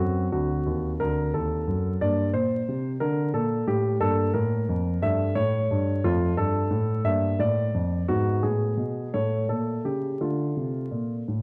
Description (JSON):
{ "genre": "classical, baroque-style suite movement for grand piano", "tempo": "59 BPM (dotted quarters)", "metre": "6/8", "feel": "rubato", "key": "G minor", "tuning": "A4 = 441 Hz", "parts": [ { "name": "warm grand piano", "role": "solo", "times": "0.0-11.4 s", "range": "D2 to E5", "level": "-26 LUFS", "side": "equal", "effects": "none" } ], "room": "moderate recital hall reverb, RT60 1.3 s", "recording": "close, detailed microphones, vinyl crackle", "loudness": "-26 LUFS", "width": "mono", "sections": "0.0-11.4 A section", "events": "none", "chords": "0.0 D7; 2.0 Gm; 4.0 Fadd11; 5.0 A7/G; 6.0 Fadd9; 7.1 Gm13; 8.1 G#m7; 9.1 A; 10.2 Dm" }